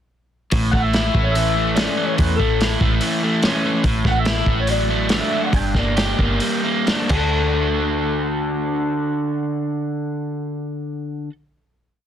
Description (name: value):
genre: indie rock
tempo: 124-145 BPM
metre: 4/4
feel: straight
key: D major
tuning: A4 = 442 Hz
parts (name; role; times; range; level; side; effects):
- crunchy overdriven guitar; riff; 0.5-11.3 s; G2 to A4; -21 LUFS; equal; none
- overdriven picked electric bass; bass; 0.5-11.2 s; G1 to E2; -22 LUFS; equal; none
- vintage drum kit; drums; 0.5-7.2 s; crash cymbal, hi-hat, kick drum, snare drum; -22 LUFS; equal; none
- electric guitar through a small old amp; melody; 0.7-11.3 s; A4 to G5; -25 LUFS; left 2 dB; phaser
room: light reverb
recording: dense, heavily limited modern master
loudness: -17 LUFS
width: side -9 dB against mid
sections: 0.5-7.4 interlude; 7.4-11.2 final hit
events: slowing down 3.8-7.4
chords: 0.5 A; 3.8 Dadd9/A; 5.5 Gm; 7.1 D